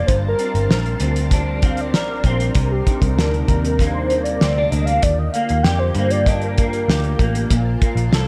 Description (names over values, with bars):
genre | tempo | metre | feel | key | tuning
indie pop, bedroom pop | 97 BPM | 4/4 | straight | unclear | A4 = 440 Hz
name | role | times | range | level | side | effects
warm velvety synth lead | melody | 0.0-7.9 s | G4 to G5 | -25 LUFS | equal | analog chorus, analog delay
electric guitar through a small old amp | accompaniment | 0.0-8.3 s | G2 to Bb4 | -28 LUFS | equal | ensemble chorus, vibrato effect
ensemble organ-string | sustained chords | 0.0-8.3 s | C3 to A5 | -32 LUFS | equal | ensemble chorus
vintage muted picked electric bass | bass | 0.0-8.3 s | G1 to G2 | -23 LUFS | equal | none
cloth-damped thuddy drum kit | drums | 0.1-8.3 s | hi-hat, kick drum, snare drum | -21 LUFS | equal | none
room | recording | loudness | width
little or no reverb | faint mains hum | -18 LUFS | mono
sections
0.0-8.3 A section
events
soft synth lead solo 0.0-8.3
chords
0.1 Gm11; 2.6 Cm9; 5.0 Ebmaj7; 7.5 Bbmaj7